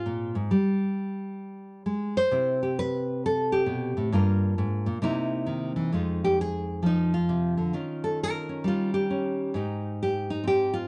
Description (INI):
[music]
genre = solo jazz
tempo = 133 BPM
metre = 4/4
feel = swing 65% on 8ths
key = unclear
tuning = A4 = 438 Hz
[part]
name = nylon-string guitar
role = solo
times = 0.0-10.9 s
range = F2 to C5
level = -27 LUFS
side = equal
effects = none
[sound]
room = moderate studio reverb, RT60 0.8 s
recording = nothing above 10.7 kHz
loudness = -27 LUFS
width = mono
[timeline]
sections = 0.0-5.9 A section; 5.9-10.9 A section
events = nylon-string guitar solo 0.0-5.9, 5.9-10.9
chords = 0.0 Ab69; 0.5 N.C.; 2.3 Cmaj7; 4.1 Gm7; 5.0 C7#9; 5.9 Fm7; 7.7 Eb9; 9.5 Abmaj7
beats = 0.05 | 0.50 0.95 1.40 1.85 | 2.31 2.76 3.21 3.66 | 4.11 4.56 5.01 5.46 | 5.91 6.36 6.82 7.27 | 7.72 8.17 8.62 9.08 | 9.53 9.98 10.43